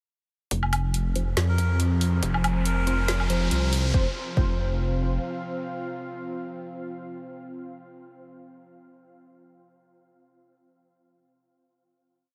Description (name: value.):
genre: deep dubstep.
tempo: 140 BPM.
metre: 4/4.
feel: swing 54% on 16ths, half-time.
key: unclear.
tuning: A4 = 440 Hz.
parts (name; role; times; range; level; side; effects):
deep dark ambient pad; sustained chords; 1.7-8.1 s; F3 to F5; -36 LUFS; equal; chorus, built-in reverb.
dark detuned saw bass; bass; 0.5-5.2 s; F1 to F2; -27 LUFS; equal; tube saturation.
deep house drum kit; drums; 0.5-3.8 s; hi-hat, snare drum, woodblock; -34 LUFS; equal; high-pass filter on hats, high-pass filter on perc, high-pass filter on snare, high-pass filter on room.
electronic kick drum; drums; 0.5-4.5 s; none; -27 LUFS; equal; high-pass filter on kick, high-pass filter on room.
riser; sound effects; 1.7-3.9 s; none; -39 LUFS; equal; none.
filtered dub chord stab; stabs; 1.2-8.8 s; F3 to C5; -39 LUFS; equal; phaser, dub echo.
melodica; melody; 1.5-3.3 s; Bb4; -38 LUFS; equal; dub echo.
room: moderate huge ambient reverb, RT60 8.8 s.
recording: dreamy mix soaked in reverb.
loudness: -26 LUFS.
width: mono.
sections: 0.5-3.9 build; 3.9-7.4 final chord.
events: build-up 0.5-3.9; filter sweep on synth stab 0.5-3.9; riser 1.7-3.9.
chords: 0.5 F5.